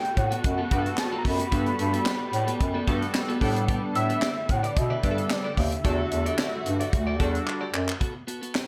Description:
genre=early-eighties boogie funk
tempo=111 BPM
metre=4/4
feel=straight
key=E minor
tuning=A4 = 437 Hz
part: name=fat analog lead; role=melody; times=0.0-7.5 s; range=D5 to B5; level=-33 LUFS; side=equal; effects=chorus, slapback echo
part: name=warm studio string section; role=sustained chords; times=0.0-8.0 s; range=D3 to F#4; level=-37 LUFS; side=equal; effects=none
part: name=clean electric guitar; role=riff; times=0.0-8.6 s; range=B3 to E5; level=-38 LUFS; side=equal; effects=lush chorus
part: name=tight funk drum kit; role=drums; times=0.0-8.7 s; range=handclaps, hi-hat, kick drum, snare drum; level=-30 LUFS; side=equal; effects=gated reverb
part: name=breathy bass clarinet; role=bass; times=0.2-7.9 s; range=D2 to B2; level=-30 LUFS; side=equal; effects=none
part: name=chorused polysynth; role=accompaniment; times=0.7-7.6 s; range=G3 to A4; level=-33 LUFS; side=equal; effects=none
room=light reverb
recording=none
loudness=-26 LUFS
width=mono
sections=0.0-8.0 A section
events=drum fill 7.5-8.0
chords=0.0 Gmaj9; 3.4 A9sus4; 5.8 Em11; 8.0 B7(no3)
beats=0.44 0.98 | 1.52 2.06 2.60 3.15 | 3.69 4.23 4.77 5.31 | 5.85 6.39 6.93 7.47 | 8.01 8.55

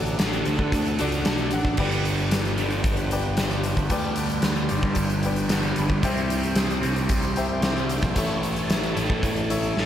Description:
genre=classic rock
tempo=113 BPM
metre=4/4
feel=straight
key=unclear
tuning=A4 = 441 Hz
part: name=bright upright piano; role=accompaniment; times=0.0-9.9 s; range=F#4 to B5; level=-33 LUFS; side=left 4 dB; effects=none
part: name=tonewheel organ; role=sustained chords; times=0.0-9.9 s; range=D4 to A5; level=-34 LUFS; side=right 1 dB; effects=overdrive, chorus vibrato, slow rotary speaker
part: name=crunchy overdriven guitar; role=riff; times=0.0-9.9 s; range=G2 to D4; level=-26 LUFS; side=equal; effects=phaser, slapback echo
part: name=fuzz picked electric bass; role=bass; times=0.0-9.9 s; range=G1 to D3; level=-28 LUFS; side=equal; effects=overdrive
part: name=huge arena drum kit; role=drums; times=0.1-9.9 s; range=crash cymbal, hi-hat, kick drum, snare drum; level=-26 LUFS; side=equal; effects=none
room=light reverb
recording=none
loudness=-21 LUFS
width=side -10 dB against mid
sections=0.0-9.9 A section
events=upright piano fill 1.0-1.8, 5.0-6.0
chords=0.0 D; 1.8 G; 6.0 C; 8.2 A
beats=0.18 0.72 1.25 | 1.78 2.31 2.84 3.37 | 3.90 4.44 4.97 5.50 | 6.03 6.57 7.10 7.63 | 8.16 8.70 9.23 9.77

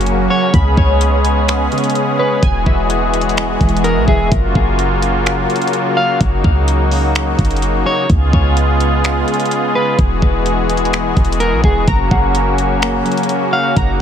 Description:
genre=hip hop, atmospheric cloud-rap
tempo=127 BPM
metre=4/4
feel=half-time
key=F# major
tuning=A4 = 440 Hz
part: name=pipe organ, strings celeste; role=sustained chords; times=0.0-14.0 s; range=C#3 to G#4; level=-16 LUFS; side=left 1 dB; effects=sidechain pumping
part: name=warbly lo-fi synth keys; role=arpeggios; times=0.0-4.3, 11.9-14.0 s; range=C#3 to B5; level=-20 LUFS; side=right 2 dB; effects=chorus, phaser, ping-pong delay
part: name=clean 808-style bass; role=bass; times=0.0-14.0 s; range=E1 to C#2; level=-16 LUFS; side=equal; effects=none
part: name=smooth R&B drum kit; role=drums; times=0.0-13.9 s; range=finger snaps, hi-hat, kick drum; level=-18 LUFS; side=equal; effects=vintage 12-bit sampler grit
part: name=electric guitar at the edge of break-up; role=melody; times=0.3-13.8 s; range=G#4 to E#5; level=-22 LUFS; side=equal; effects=ping-pong delay
room=light reverb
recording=none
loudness=-12 LUFS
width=side -8 dB against mid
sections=0.0-4.3 A section; 4.3-14.0 A section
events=none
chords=0.0 F#; 0.5 C#5; 2.4 Eadd9; 4.3 F#maj7; 8.1 C#7; 10.0 Eadd9; 11.9 F#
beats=0.07 | 0.54 1.01 1.48 1.95 | 2.43 2.90 3.37 3.84 | 4.32 4.79 5.26 5.73 | 6.21 6.68 7.15 7.62 | 8.10 8.57 9.04 9.51 | 9.99 10.46 10.93 11.40 | 11.88 12.35 12.82 13.29 | 13.77

